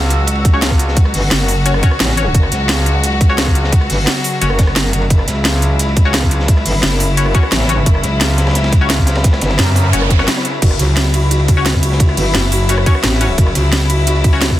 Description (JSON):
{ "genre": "dark technical drum and bass", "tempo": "174 BPM", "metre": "4/4", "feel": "straight", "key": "unclear", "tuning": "A4 = 441 Hz", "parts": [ { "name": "clear studio string section", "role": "sustained chords", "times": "0.0-14.6 s", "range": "C#3 to F#4", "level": "-20 LUFS", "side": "left 2 dB", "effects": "sidechain pumping" }, { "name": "metallic wobble bass", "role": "bass", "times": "0.0-13.5 s", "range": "F#1 to F#2", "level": "-16 LUFS", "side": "equal", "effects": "chorus, overdrive, sidechain pumping" }, { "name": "crunchy breakbeat drum kit", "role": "drums", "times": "0.1-14.5 s", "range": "hi-hat, ride cymbal, snare drum", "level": "-25 LUFS", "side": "equal", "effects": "high-pass filter on cymbals, high-pass filter on hats, high-pass filter on snare, high-pass filter on room" }, { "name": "drum and bass drum kit", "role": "drums", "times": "0.1-14.6 s", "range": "crash cymbal, hi-hat, ride cymbal, rim click, snare drum", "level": "-18 LUFS", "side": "equal", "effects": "none" }, { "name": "electronic kick drum", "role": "drums", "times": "0.4-14.6 s", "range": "none", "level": "-12 LUFS", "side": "equal", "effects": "none" }, { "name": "band-passed chord stab", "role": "stabs", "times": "0.5-14.4 s", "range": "C#4 to C#5", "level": "-22 LUFS", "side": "left 4 dB", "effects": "chorus, dub echo" }, { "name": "noise sweep", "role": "sound effects", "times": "9.5-10.6 s", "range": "none", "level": "-24 LUFS", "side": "right 4 dB", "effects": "none" }, { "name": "felt-muted upright piano", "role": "arpeggios", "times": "10.6-14.5 s", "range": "F#4", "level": "-23 LUFS", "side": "equal", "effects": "sidechain pumping, dub echo" }, { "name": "growling FM bass", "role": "bass", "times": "10.8-14.6 s", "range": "F#1 to C#2", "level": "-15 LUFS", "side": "equal", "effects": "none" } ], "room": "small room reverb", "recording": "dense, heavily limited modern master", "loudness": "-11 LUFS", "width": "side -14 dB against mid", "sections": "0.0-14.6 A section", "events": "noise sweep 9.5-10.6; break 10.3-10.6", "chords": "0.0 F#5" }